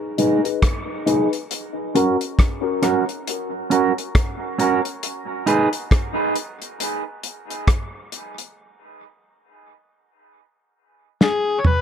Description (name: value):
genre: dub reggae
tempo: 68 BPM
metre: 4/4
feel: swing 60% on 16ths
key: G# minor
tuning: A4 = 440 Hz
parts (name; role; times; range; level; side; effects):
- electric guitar at the edge of break-up; accompaniment; 0.2-5.7 s; C#4 to B4; -22 LUFS; right 4 dB; low-pass filter, dub echo
- warm grand piano; stabs; 0.2-2.2 s; C#4 to B4; -25 LUFS; left 8 dB; low-pass filter, dub echo
- damped 70s drum kit; drums; 0.2-11.8 s; hi-hat, kick drum, rim click, snare drum, toms; -20 LUFS; equal; none
- overdriven harmonica; melody; 11.2-11.8 s; G#4 to C#5; -20 LUFS; left 4 dB; none
room: light reverb, small room ambience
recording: echo-heavy mix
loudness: -18 LUFS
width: side -8 dB against mid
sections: 0.0-11.8 A section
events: filter sweep 0.0-11.8; break 1.5-11.8; drum fill 11.2-11.8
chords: 0.0 G#m; 1.5 F#; 5.0 G#m; 8.6 N.C.